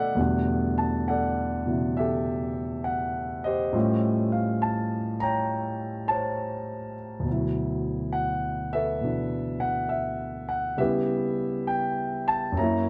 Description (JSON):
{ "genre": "solo jazz", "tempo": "68 BPM", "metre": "4/4", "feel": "swing 68% on 8ths, rubato", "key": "D major", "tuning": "A4 = 440 Hz", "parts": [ { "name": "dark concert grand piano", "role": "solo", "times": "0.0-12.9 s", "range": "D2 to B5", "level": "-27 LUFS", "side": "equal", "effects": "none" } ], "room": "moderate club reverb, RT60 0.5 s", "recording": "none", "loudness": "-27 LUFS", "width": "mono", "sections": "0.0-12.9 A section", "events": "none", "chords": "0.2 Em11; 3.7 A7alt; 7.3 D69; 10.8 C#m7b5", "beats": "| 0.19 1.08 1.98 2.86 | 3.75 4.62 5.50 6.39 | 7.27 8.15 9.03 9.90 | 10.79 11.68 12.57" }